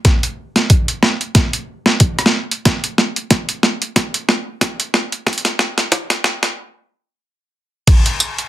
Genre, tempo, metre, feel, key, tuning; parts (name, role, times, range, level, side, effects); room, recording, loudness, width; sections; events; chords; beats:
glitch hop; 92 BPM; 4/4; swing 56% on 16ths
boom bap sampler-style drum kit; drums; 0.0-8.5 s; crash cymbal, hi-hat, rim click, snare drum, tambourine; -15 LUFS; equal; overdrive
electronic kick drum; drums; 0.0-8.0 s; -14 LUFS; equal; overdrive
moderate small room reverb, RT60 0.5 s; dense, heavily limited modern master, high-pass filter; -14 LUFS; side -14 dB against mid
0.0-7.9 A section
build-up 0.0-7.9; drum fill 0.0-6.6; filter sweep 0.0-7.9; stop 6.6-7.9
| 0.05 0.70 1.35 2.00 | 2.66 3.31 3.96 4.61 | 5.27 5.92 6.57 7.22 | 7.88